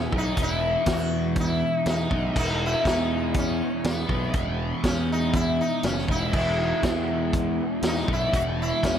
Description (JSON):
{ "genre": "psychedelic rock", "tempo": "121 BPM", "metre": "4/4", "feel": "straight", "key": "E major", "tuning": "A4 = 440 Hz", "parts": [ { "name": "sitar", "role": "melody", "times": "0.0-9.0 s", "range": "B3 to F#4", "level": "-28 LUFS", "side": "left 2 dB", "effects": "diffuse ambient delay" }, { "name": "crunchy overdriven guitar", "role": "riff", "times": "0.0-9.0 s", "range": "E2 to E4", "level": "-28 LUFS", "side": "right 1 dB", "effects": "flanger" }, { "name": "fuzz picked electric bass", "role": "bass", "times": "0.0-9.0 s", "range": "E1 to E2", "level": "-28 LUFS", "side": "equal", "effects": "overdrive" }, { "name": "vintage drum kit", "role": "drums", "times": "0.1-9.0 s", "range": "crash cymbal, hi-hat, kick drum, snare drum", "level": "-28 LUFS", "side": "equal", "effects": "none" } ], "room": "moderate plate reverb, RT60 1.8 s", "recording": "dreamy mix soaked in reverb", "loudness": "-22 LUFS", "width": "side -9 dB against mid", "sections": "0.0-9.0 A section", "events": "sitar solo 0.0-9.0", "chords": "0.0 E" }